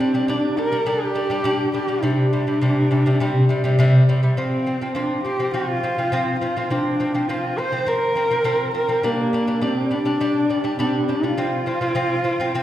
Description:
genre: mongolian traditional, Mongolian folk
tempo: 103 BPM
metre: 4/4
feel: straight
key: F zhi mode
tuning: A4 = 440 Hz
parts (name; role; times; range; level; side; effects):
- warm horsehead fiddle; melody; 0.0-12.6 s; Bb3 to C5; -22 LUFS; equal; none
- lute; arpeggios; 0.0-12.6 s; C3 to D4; -20 LUFS; equal; none
room: wet recital hall reverb, RT60 1.6 s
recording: heard from further back in the room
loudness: -18 LUFS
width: side -12 dB against mid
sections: 0.0-12.6 A section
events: none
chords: 0.0 G5; 2.0 C5; 4.4 F5; 9.0 G5; 11.4 F5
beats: 0.29 0.87 1.45 | 2.04 2.62 3.20 3.78 | 4.37 4.95 5.53 6.12 | 6.70 7.29 7.87 8.45 | 9.04 9.62 10.20 10.79 | 11.37 11.95 12.53

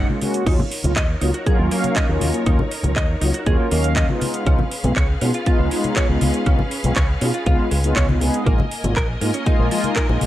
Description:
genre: nu-disco, nu disco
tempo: 120 BPM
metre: 4/4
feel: straight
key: Eb minor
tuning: A4 = 441 Hz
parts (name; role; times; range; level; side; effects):
- mellow synth brass; accompaniment; 0.0-10.3 s; Gb3 to F5; -23 LUFS; equal; chorus, sidechain pumping, slapback echo
- direct-recorded clean electric guitar; riff; 0.0-10.1 s; F3 to Eb5; -27 LUFS; right 1 dB; ensemble chorus, low-pass filter, slapback echo
- fingered electric bass with an envelope filter; bass; 0.0-10.3 s; Ab1 to Cb3; -21 LUFS; equal; none
- congas and bongos; percussion; 0.1-10.3 s; none; -25 LUFS; left 2 dB; none
- house drum kit; drums; 0.2-10.3 s; crash cymbal, handclaps, hi-hat; -28 LUFS; right 1 dB; none
- clear symphonic string section; sustained chords; 0.5-10.3 s; Bb3 to Ab5; -29 LUFS; left 1 dB; sidechain pumping
- electronic kick drum; drums; 0.5-10.1 s; none; -19 LUFS; equal; none
room: digital ambience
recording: none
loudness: -17 LUFS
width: side -14 dB against mid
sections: 0.0-10.3 A section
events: none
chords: 0.5 Ebm7; 4.2 Db7; 8.5 Bb7sus4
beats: | 0.47 0.97 1.47 1.97 | 2.47 2.97 3.47 3.97 | 4.47 4.97 5.47 5.97 | 6.47 6.97 7.47 7.97 | 8.47 8.97 9.47 9.97

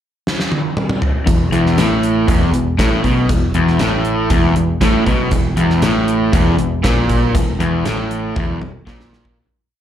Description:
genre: classic rock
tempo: 119 BPM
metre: 4/4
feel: straight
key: unclear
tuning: A4 = 444 Hz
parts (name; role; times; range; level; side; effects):
- gated 80s drum kit; drums; 0.3-9.4 s; hi-hat, kick drum, snare drum, toms; -18 LUFS; equal; none
- crunchy overdriven guitar; riff; 1.3-9.4 s; E2 to B2; -18 LUFS; left 6 dB; none
- distorted electric guitar; riff; 1.3-9.4 s; E2 to B2; -20 LUFS; right 10 dB; distortion, slapback echo
- picked electric bass; bass; 1.3-9.3 s; E1 to B1; -20 LUFS; equal; none
room: light reverb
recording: live gig heard through the venue's PA, club reverb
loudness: -13 LUFS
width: side -10 dB against mid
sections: 0.0-1.3 pickup bar; 1.3-9.4 riff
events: drum fill 0.3-1.3, 8.4-9.4; fade-out 7.3-9.4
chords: 0.0 N.C.; 1.3 E5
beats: 0.26 0.77 | 1.27 1.78 2.29 2.79 | 3.29 3.80 4.31 4.81 | 5.32 5.82 6.33 6.84 | 7.34 7.85 8.36 8.87

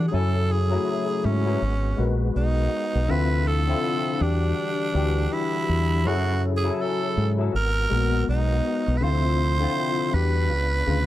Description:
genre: R&B, neo-soul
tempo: 81 BPM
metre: 4/4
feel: swing 60% on 16ths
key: unclear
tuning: A4 = 439 Hz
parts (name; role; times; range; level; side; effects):
- raspy tenor saxophone; melody; 0.0-11.1 s; C#4 to C5; -27 LUFS; right 3 dB; none
- barky tine electric piano; accompaniment; 0.0-11.1 s; C#3 to G#5; -27 LUFS; left 6 dB; overdrive, ensemble chorus
- tonewheel organ; sustained chords; 0.0-11.1 s; C3 to F#5; -34 LUFS; right 4 dB; chorus vibrato, fast rotary speaker
- deep dub fingered electric bass; bass; 0.0-11.1 s; G#1 to G#2; -23 LUFS; equal; none
room: little or no reverb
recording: dry, close 1970s-style studio recording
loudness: -21 LUFS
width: side -14 dB against mid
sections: 0.0-11.1 A section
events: none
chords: 0.1 F#m9; 1.6 G#m9; 3.1 Dm9; 4.2 Em9; 6.0 F#m9; 7.5 G#m9; 9.0 Dm9; 10.1 Em9; 10.5 C#7b9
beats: | 0.12 0.86 1.60 2.34 | 3.08 3.82 4.56 5.30 | 6.04 6.78 7.52 8.26 | 9.01 9.74 10.49

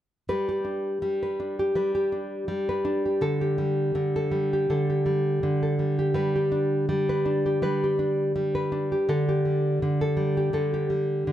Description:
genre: pop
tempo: 82 BPM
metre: 4/4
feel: swing 55% on 16ths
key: G major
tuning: A4 = 440 Hz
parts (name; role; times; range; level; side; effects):
- nylon-string guitar; accompaniment; 0.3-11.3 s; D3 to B4; -23 LUFS; equal; none
room: light reverb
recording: none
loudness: -23 LUFS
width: side -12 dB against mid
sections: 0.3-11.3 A section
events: none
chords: 0.3 G; 3.2 Dsus4; 6.2 G; 9.1 Dsus4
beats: | 0.29 1.02 1.76 2.49 | 3.22 3.96 4.69 5.42 | 6.16 6.89 7.62 8.36 | 9.09 9.82 10.56 11.29

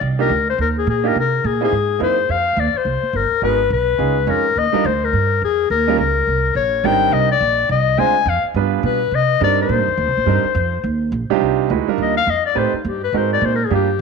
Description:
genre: jazz, small-group swing and bop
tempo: 210 BPM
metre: 4/4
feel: swing 61% on 8ths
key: C minor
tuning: A4 = 438 Hz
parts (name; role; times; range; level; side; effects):
- upright bass; bass; 0.0-14.0 s; G1 to C3; -21 LUFS; right 3 dB; none
- breathy clarinet; melody; 0.2-14.0 s; Eb4 to Ab5; -17 LUFS; left 9 dB; slapback echo
- clear grand piano; accompaniment; 0.2-13.9 s; C3 to Db5; -20 LUFS; right 16 dB; none
room: moderate plate reverb, RT60 2.4 s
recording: 1960s-style stereo with parts hard left and right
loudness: -15 LUFS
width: side -5 dB against mid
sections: 0.0-2.3 A section; 2.3-11.4 B section; 11.4-14.0 C section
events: clarinet solo 11.4-14.0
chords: 0.0 Cm9; 1.7 C7alt; 2.3 Fsus2; 3.4 Abm7; 4.0 Db9; 4.6 Ebmaj9; 5.7 Eb7(no3); 6.8 Abmaj9#11; 8.0 Dm7b5; 8.6 G7; 9.1 Cm7; 11.4 Cm11; 12.6 Am7b5; 13.1 Ab9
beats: | 0.02 0.30 0.58 0.87 | 1.15 1.44 1.72 2.00 | 2.29 2.57 2.85 3.14 | 3.42 3.71 3.99 4.28 | 4.56 4.84 5.13 5.41 | 5.70 5.98 6.27 6.55 | 6.84 7.12 7.41 7.69 | 7.98 8.27 8.55 8.84 | 9.12 9.41 9.69 9.98 | 10.27 10.55 10.84 11.13 | 11.41 11.70 11.99 12.27 | 12.56 12.85 13.13 13.42 | 13.71 14.00

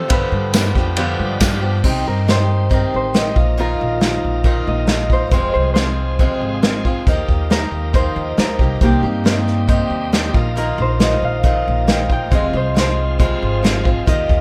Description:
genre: folk rock and heartland rock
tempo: 137 BPM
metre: 4/4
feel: straight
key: C minor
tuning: A4 = 440 Hz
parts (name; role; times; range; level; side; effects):
- Celtic harp; melody; 0.0-14.4 s; Bb3 to G5; -25 LUFS; equal; plate reverb, analog delay
- bright upright piano; accompaniment; 0.0-1.8 s; F4 to B5; -33 LUFS; equal; none
- picked swing-style acoustic guitar; accompaniment; 0.0-14.4 s; F2 to G4; -25 LUFS; equal; none
- bright tonewheel organ; sustained chords; 0.0-14.4 s; F3 to C5; -34 LUFS; equal; overdrive, fast rotary speaker
- upright bass; bass; 0.0-14.4 s; F1 to F3; -23 LUFS; equal; none
- soft brush drum kit; drums; 0.1-14.4 s; crash cymbal, hi-hat, kick drum, ride cymbal, snare drum; -19 LUFS; equal; none
- tambourine; percussion; 0.5-1.5 s; none; -34 LUFS; equal; none
room: light reverb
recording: none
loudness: -17 LUFS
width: mono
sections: 0.0-1.8 A section; 1.8-14.4 B section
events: upright piano fill 0.5-1.8; harp solo 1.8-14.4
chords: 0.1 G7; 1.8 Cm; 3.4 Bbsus4; 5.3 Fm; 7.1 Ebadd9; 8.8 Cm; 10.3 Bbsus4; 12.3 Fm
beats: | 0.10 0.54 0.97 1.41 | 1.84 2.28 2.71 3.15 | 3.58 4.02 4.45 4.89 | 5.33 5.76 6.20 6.63 | 7.07 7.51 7.94 8.38 | 8.82 9.26 9.69 10.13 | 10.57 11.01 11.45 11.88 | 12.32 12.76 13.20 13.64 | 14.08

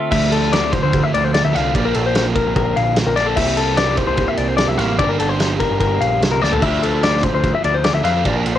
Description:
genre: math rock and midwest emo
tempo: 148 BPM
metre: 4/4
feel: straight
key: D minor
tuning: A4 = 440 Hz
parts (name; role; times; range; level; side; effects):
- twelve-string electric guitar; accompaniment; 0.0-1.7 s; D2 to A3; -22 LUFS; right 6 dB; vibrato effect
- clean electric guitar; arpeggios; 0.0-8.6 s; A4 to F5; -19 LUFS; left 7 dB; none
- overdriven semi-hollow guitar; riff; 0.1-8.6 s; G2 to E4; -22 LUFS; right 7 dB; none
- growling picked electric bass; bass; 0.1-8.6 s; G1 to F2; -21 LUFS; equal; overdrive
- loose indie drum kit; drums; 0.1-8.6 s; crash cymbal, kick drum, ride cymbal, snare drum, toms; -21 LUFS; equal; cassette tape
room: small room ambience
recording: home recording on cassette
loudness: -15 LUFS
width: side -11 dB against mid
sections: 0.1-8.6 A section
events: drum fill 6.4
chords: 0.1 Dm9; 1.7 Bbmaj9; 3.4 C13; 5.0 Gm11; 6.6 Dm9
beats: | 0.12 0.53 0.93 1.34 | 1.75 2.15 2.56 2.96 | 3.37 3.77 4.18 4.59 | 5.00 5.40 5.81 6.22 | 6.62 7.03 7.44 7.85 | 8.25

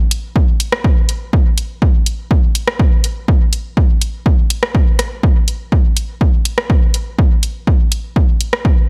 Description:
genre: techno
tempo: 123 BPM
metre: 4/4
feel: straight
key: none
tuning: none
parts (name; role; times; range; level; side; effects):
- deep house drum kit; drums; 0.1-8.6 s; hi-hat, rim click; -21 LUFS; equal; overdrive, studio reverb
- electronic kick drum; drums; 0.4-8.7 s; none; -15 LUFS; equal; overdrive, studio reverb
room: digital ambience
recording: none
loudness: -15 LUFS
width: mono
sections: 0.0-8.9 A section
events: none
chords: none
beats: 0.36 0.84 1.33 | 1.82 2.31 2.79 3.28 | 3.77 4.26 4.75 5.23 | 5.72 6.21 6.70 7.18 | 7.67 8.16 8.65

